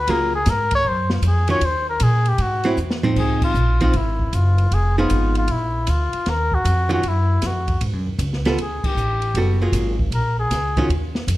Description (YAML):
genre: jazz, small-group swing and bop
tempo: 155 BPM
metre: 4/4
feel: swing 66% on 8ths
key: Db major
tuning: A4 = 441 Hz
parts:
  - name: trumpet with cup mute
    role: melody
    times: 0.0-10.9 s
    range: Fb4 to Db5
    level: -23 LUFS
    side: left 2 dB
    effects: none
  - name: upright bass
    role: bass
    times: 0.0-11.4 s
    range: F1 to Bb2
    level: -20 LUFS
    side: equal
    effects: none
  - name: archtop guitar, miked and amplified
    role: accompaniment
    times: 0.1-10.9 s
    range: Eb3 to A4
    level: -23 LUFS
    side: right 1 dB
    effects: none
  - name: open jazz drum kit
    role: drums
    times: 0.1-11.4 s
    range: crash cymbal, hi-hat, kick drum, ride cymbal, snare drum, toms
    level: -26 LUFS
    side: right 1 dB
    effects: none
room: light reverb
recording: faint mains hum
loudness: -17 LUFS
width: side -16 dB against mid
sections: 0.0-3.2 A section; 3.2-11.4 B section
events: muted trumpet solo 0.0-3.2; drum fill 2.8-3.2; band accent 3.4, 8.8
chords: 0.1 Gbmaj9; 1.6 Eb5; 2.4 Ab7b13; 3.2 Dbmaj9; 4.7 Fm7b5; 5.5 Bb; 6.3 Ebmadd9; 7.8 Abm7; 8.6 Gsus2; 9.4 Gbmaj9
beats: | 0.09 0.48 0.86 1.25 | 1.63 2.01 2.40 2.78 | 3.17 3.56 3.94 4.33 | 4.71 5.10 5.49 5.87 | 6.26 6.65 7.03 7.42 | 7.81 8.19 8.58 8.97 | 9.36 9.74 10.13 10.52 | 10.90 11.29